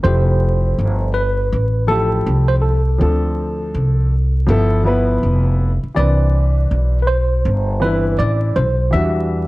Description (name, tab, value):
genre	hip hop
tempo	81 BPM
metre	4/4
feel	swing 63% on 16ths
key	unclear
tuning	A4 = 440 Hz
part	tine electric piano	melody	0.0-9.5 s	A4 to E5	-22 LUFS	right 1 dB	overdrive, fast stereo tremolo, cassette tape
part	dark upright piano	accompaniment	0.0-9.5 s	E3 to B4	-20 LUFS	left 1 dB	cassette tape
part	upright bass	bass	0.0-9.5 s	F1 to E2	-16 LUFS	equal	none
room	small room ambience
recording	home recording on cassette, vinyl crackle, faint mains hum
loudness	-14 LUFS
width	side -19 dB against mid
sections	0.0-9.5 A section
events	none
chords	0.0 Fmaj9; 3.0 Dm7; 4.5 G13; 6.0 Cmaj9; 8.9 Em9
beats	| 0.04 0.78 1.52 2.26 | 3.00 3.75 4.49 5.23 | 5.97 6.71 7.45 8.19 | 8.93